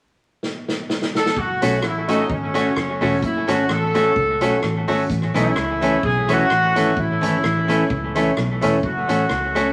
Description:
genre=ska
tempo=128 BPM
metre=4/4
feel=swing 55% on 8ths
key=F# minor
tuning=A4 = 439 Hz
part: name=swinging big-band drum kit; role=drums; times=0.4-9.7 s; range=hi-hat, kick drum, rim click, snare drum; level=-30 LUFS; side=equal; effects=none
part: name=mellow horn section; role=melody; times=1.2-9.7 s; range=C#4 to A4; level=-24 LUFS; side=equal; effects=none
part: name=fingered electric bass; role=bass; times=1.4-9.7 s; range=E1 to C#2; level=-28 LUFS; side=equal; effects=none
part: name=archtop guitar, miked and amplified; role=accompaniment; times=1.6-9.7 s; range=E3 to F#4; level=-24 LUFS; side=equal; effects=analog delay
part: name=warm upright piano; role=stabs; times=1.6-9.7 s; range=C#4 to C#5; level=-27 LUFS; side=equal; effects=none
room=wet studio reverb, RT60 0.7 s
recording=vinyl crackle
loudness=-20 LUFS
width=mono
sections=0.0-1.4 A section; 1.4-9.7 B section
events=drum fill 0.4-1.4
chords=0.0 N.C.; 1.4 F#m; 5.1 A; 8.8 F#m

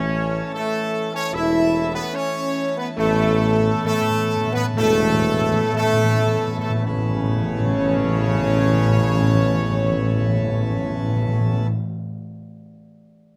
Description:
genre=classical, ceremonial fanfare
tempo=53-76 BPM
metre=4/4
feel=straight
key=A major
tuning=A4 = 439 Hz
part: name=clear trumpet section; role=melody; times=0.0-11.7 s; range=A4 to E5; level=-30 LUFS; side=equal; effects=none
part: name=mellow French horn section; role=sustained chords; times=0.0-11.6 s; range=A3 to E4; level=-27 LUFS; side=equal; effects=none
part: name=pipe organ, plenum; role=sustained chords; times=0.0-11.7 s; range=E3 to A4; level=-30 LUFS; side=equal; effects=none
part: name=warm trombone section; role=sustained chords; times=0.0-11.7 s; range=C#3 to E4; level=-30 LUFS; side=equal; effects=none
part: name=mellow tuba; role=bass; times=0.0-11.7 s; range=E1 to A1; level=-26 LUFS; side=equal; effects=none
part: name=timpani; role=percussion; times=0.0-11.6 s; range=A2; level=-25 LUFS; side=equal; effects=none
room=light reverb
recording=close, detailed microphones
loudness=-20 LUFS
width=mono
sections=0.0-6.9 A section; 6.9-11.2 B section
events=slowing down 0.0-6.9; timpani fill 3.0-6.9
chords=0.0 A; 6.9 Aadd9

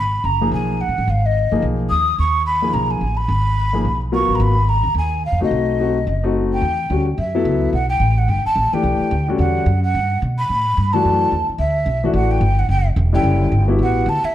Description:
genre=modal jazz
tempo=217 BPM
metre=4/4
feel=swing 60% on 8ths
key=G# dorian, E dorian from 6.6 s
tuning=A4 = 440 Hz
part: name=breathy mellow jazz flute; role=melody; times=0.0-14.3 s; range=D#5 to D#6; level=-20 LUFS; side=equal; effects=none
part: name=upright bass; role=bass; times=0.0-14.3 s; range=E1 to B2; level=-19 LUFS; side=equal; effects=none
part: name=warm concert grand piano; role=accompaniment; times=0.4-14.0 s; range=D3 to A#4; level=-21 LUFS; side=left 3 dB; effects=none
room=moderate large studio reverb, RT60 1.2 s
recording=dark, warm production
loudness=-15 LUFS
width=side -12 dB against mid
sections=0.0-6.6 A section; 6.6-14.3 B section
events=none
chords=0.0 G#m69; 5.5 B7b9; 6.6 Em11; 11.0 Dadd9

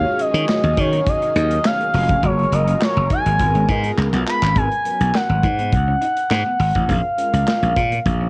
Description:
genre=early-eighties boogie funk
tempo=103 BPM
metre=4/4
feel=straight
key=G# dorian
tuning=A4 = 440 Hz
part: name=expressive portamento lead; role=melody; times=0.0-8.3 s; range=C#5 to B5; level=-22 LUFS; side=equal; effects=chorus, cassette tape, plate reverb
part: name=mellow synth brass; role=accompaniment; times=0.0-7.8 s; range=F#3 to C#5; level=-32 LUFS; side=equal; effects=chorus, cassette tape, plate reverb
part: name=lush unison pad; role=sustained chords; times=0.0-4.6 s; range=D#3 to E#5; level=-31 LUFS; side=equal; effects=chorus, phaser, cassette tape, plate reverb
part: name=slap bass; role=bass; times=0.0-8.3 s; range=E#1 to D#3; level=-21 LUFS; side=equal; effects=none
part: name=semi-hollow electric guitar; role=riff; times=0.2-8.3 s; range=G#3 to F#4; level=-33 LUFS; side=equal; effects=lush chorus, cassette tape
part: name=modern studio drum kit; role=drums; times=0.2-8.2 s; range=handclaps, hi-hat, kick drum, snare drum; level=-26 LUFS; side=equal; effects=cassette tape
room=light reverb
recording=home recording on cassette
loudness=-18 LUFS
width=mono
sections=0.0-4.6 A section; 4.6-8.3 B section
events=drum fill 4.0-4.6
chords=0.0 D#m11; 2.2 F#maj9; 3.4 G#m69; 4.6 G#m11; 6.9 A#m7

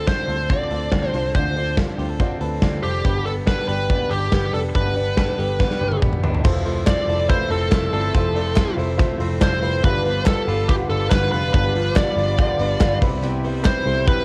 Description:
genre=jangly indie pop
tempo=142 BPM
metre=4/4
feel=straight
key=unclear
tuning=A4 = 440 Hz
part: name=bluesy overdriven lead guitar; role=melody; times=0.0-14.2 s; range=G4 to D5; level=-26 LUFS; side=equal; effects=distortion, plate reverb
part: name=picked twelve-string acoustic guitar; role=accompaniment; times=0.0-14.2 s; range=G2 to A4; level=-34 LUFS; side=equal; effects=none
part: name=warm upright piano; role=accompaniment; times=0.0-14.2 s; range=C4 to D5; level=-32 LUFS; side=equal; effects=cassette tape, plate reverb
part: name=electric guitar at the edge of break-up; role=arpeggios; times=0.0-14.2 s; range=G2 to A4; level=-33 LUFS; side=equal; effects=cassette tape, plate reverb
part: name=vintage muted picked electric bass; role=bass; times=0.0-14.1 s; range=F1 to D2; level=-27 LUFS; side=equal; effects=none
part: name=big rock drum kit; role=drums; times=0.1-14.2 s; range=crash cymbal, hi-hat, kick drum, snare drum, toms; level=-24 LUFS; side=equal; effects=none
part: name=hollow soft pad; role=sustained chords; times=6.4-14.2 s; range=G4 to E6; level=-39 LUFS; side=equal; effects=none
part: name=group handclap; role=percussion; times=6.9-13.7 s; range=none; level=-35 LUFS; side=equal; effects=none
room=light reverb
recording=home recording on cassette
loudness=-20 LUFS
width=mono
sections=0.0-6.5 A section; 6.5-14.2 B section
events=drum fill 5.6-6.5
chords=0.0 Dm7; 3.0 G; 6.5 Fmaj7; 9.8 G7; 13.0 Cmaj7

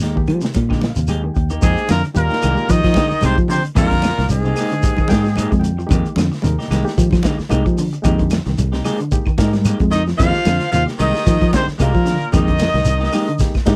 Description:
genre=afrobeat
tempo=112 BPM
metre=4/4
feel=swing 55% on 16ths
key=F dorian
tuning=A4 = 441 Hz
part: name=semi-hollow electric guitar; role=stabs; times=0.0-13.8 s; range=Ab3 to G4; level=-28 LUFS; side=equal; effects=none
part: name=fingered electric bass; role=bass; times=0.0-13.8 s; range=C2 to F3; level=-20 LUFS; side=equal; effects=none
part: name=crunchy breakbeat drum kit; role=drums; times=0.0-13.8 s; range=hi-hat, kick drum, snare drum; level=-23 LUFS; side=equal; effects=none
part: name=barky reed electric piano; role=accompaniment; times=0.2-13.8 s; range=Ab3 to Ab5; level=-29 LUFS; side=equal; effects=overdrive, fast tremolo
part: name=electric guitar at the edge of break-up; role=arpeggios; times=0.2-13.5 s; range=C3 to Ab3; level=-26 LUFS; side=equal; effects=none
part: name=claves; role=percussion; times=0.3-13.7 s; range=none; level=-39 LUFS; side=equal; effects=none
part: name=congas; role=percussion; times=0.3-13.8 s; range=none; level=-30 LUFS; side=equal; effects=none
part: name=shekere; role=percussion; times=0.3-13.8 s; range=none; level=-26 LUFS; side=equal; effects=none
part: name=clear trumpet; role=melody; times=1.6-5.6, 9.9-13.4 s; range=Ab4 to F5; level=-23 LUFS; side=equal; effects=none
part: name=clear alto saxophone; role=second line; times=1.6-5.6, 9.9-13.4 s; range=Ab3 to F4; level=-29 LUFS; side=equal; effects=none
part: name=raspy baritone saxophone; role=second line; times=1.6-5.6, 9.9-13.4 s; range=Ab2 to F3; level=-30 LUFS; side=equal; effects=none
room=little or no reverb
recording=dry, close 1970s-style studio recording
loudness=-17 LUFS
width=mono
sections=0.0-1.6 A section; 1.6-13.8 B section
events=reed electric piano fill 0.5-1.6, 5.1-5.9, 13.4-13.8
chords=0.0 Fm11

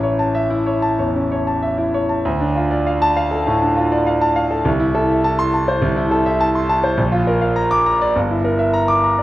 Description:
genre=classical, virtuoso piano study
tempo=92-105 BPM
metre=4/4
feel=rubato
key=D minor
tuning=A4 = 441 Hz
part: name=clear concert grand piano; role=solo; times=0.0-9.2 s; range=G1 to D6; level=-15 LUFS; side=equal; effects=none
room=moderate recital hall reverb, RT60 1.5 s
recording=worn, warbling old tape, cassette tape, warbly pitch drift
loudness=-15 LUFS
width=side -15 dB against mid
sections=0.0-2.3 A section; 2.3-9.2 B section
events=none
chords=0.0 A; 2.3 Dm; 4.7 Am/C; 7.0 Bb; 8.2 Em7b5/G

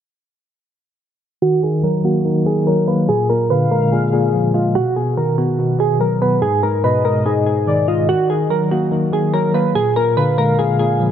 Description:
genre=hip hop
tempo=144 BPM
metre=4/4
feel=half-time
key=Eb harmonic minor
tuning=A4 = 440 Hz
part: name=soft electric-piano-like synth keys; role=melody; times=1.4-11.1 s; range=F4 to Cb5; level=-18 LUFS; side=right 1 dB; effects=chorus, low-pass filter, ping-pong delay
part: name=tine electric piano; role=accompaniment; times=1.4-11.1 s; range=Ab2 to B3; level=-17 LUFS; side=left 1 dB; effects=medium tremolo, low-pass filter
part: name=warm velvety synth lead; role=second line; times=3.5-11.1 s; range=D5 to F5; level=-24 LUFS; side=equal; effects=chorus, ping-pong delay
room=light reverb, digital ambience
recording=none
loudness=-14 LUFS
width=side -9 dB against mid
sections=1.4-11.1 A section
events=filter sweep 1.4-11.1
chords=1.4 Ebm; 3.1 Bb7; 4.8 B; 6.4 Abm; 8.1 Ebm; 9.8 Bb7

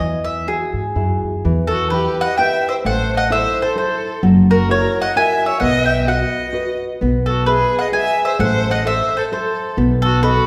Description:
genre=italian folk, Italian serenade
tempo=130 BPM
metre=3/4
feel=swing 55% on 8ths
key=unclear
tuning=A4 = 440 Hz
part: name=mandolin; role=melody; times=0.0-10.5 s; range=G#4 to G#5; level=-21 LUFS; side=equal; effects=none
part: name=nylon-string guitar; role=accompaniment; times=0.0-10.5 s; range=E3 to E5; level=-22 LUFS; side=equal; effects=none
part: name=upright bass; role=bass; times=0.0-10.4 s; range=F#1 to G#2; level=-23 LUFS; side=equal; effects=none
part: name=rich violin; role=second line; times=1.7-10.5 s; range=F#4 to E5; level=-25 LUFS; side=equal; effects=none
room=wet recital hall reverb, RT60 1.5 s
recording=recorded in a church or concert hall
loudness=-17 LUFS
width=mono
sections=0.0-1.4 A section; 1.4-10.5 B section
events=none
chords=0.0 Eadd9; 1.4 Em; 2.8 Am; 4.2 F#7; 5.6 B; 7.0 E/B; 8.4 Am; 9.8 B7

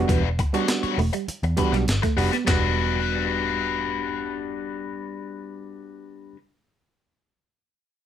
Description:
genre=funk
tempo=100 BPM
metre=4/4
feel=straight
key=E minor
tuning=A4 = 441 Hz
part: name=semi-hollow electric guitar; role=riff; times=0.0-2.7 s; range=E3 to B3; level=-29 LUFS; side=right 6 dB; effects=phaser
part: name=overdriven reed electric piano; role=stabs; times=0.0-6.3 s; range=G3 to F#4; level=-28 LUFS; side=right 4 dB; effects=none
part: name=vintage muted picked electric bass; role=bass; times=0.0-6.3 s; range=E1 to E2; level=-26 LUFS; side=equal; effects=none
part: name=biting overdriven guitar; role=accompaniment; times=0.1-6.4 s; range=G3 to C#5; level=-27 LUFS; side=left 9 dB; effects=wah
part: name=breakbeat sampler-style drum kit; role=drums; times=0.1-2.6 s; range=handclaps, hi-hat, kick drum, snare drum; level=-25 LUFS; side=equal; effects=none
room=light reverb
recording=none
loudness=-22 LUFS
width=side -10 dB against mid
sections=0.0-2.5 A section; 2.5-4.9 B section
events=none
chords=0.0 Em9

